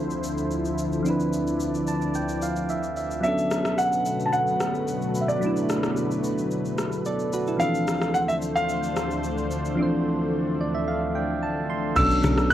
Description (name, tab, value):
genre	amapiano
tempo	110 BPM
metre	4/4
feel	straight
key	unclear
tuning	A4 = 440 Hz
part	soft electric-piano-like synth keys	accompaniment	0.0-12.5 s	E3 to C6	-26 LUFS	right 1 dB	chorus, low-pass filter
part	lush unison pad	sustained chords	0.0-12.5 s	D2 to D5	-28 LUFS	left 1 dB	chorus, low-pass filter
part	deep house drum kit	drums	0.1-12.5 s	crash cymbal, kick drum, rim click, shaker	-32 LUFS	left 1 dB	overdrive
part	dark concert grand piano	melody	3.2-12.5 s	D5 to F#6	-26 LUFS	equal	low-pass filter, digital delay
part	deep log drum bass	bass	12.0-12.5 s	B1	-24 LUFS	left 1 dB	none
part	congas	percussion	12.0-12.4 s	none	-30 LUFS	left 2 dB	none
room	moderate plate reverb, RT60 1.2 s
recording	worn, warbling old tape, cassette tape, warbly pitch drift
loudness	-22 LUFS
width	side -11 dB against mid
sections	0.0-12.0 A section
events	filter sweep 0.0-12.0; synth keys fill 1.6-3.2, 10.3-12.0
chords	0.0 Dm9; 3.2 Bm9; 7.6 Dm9; 12.0 Bm9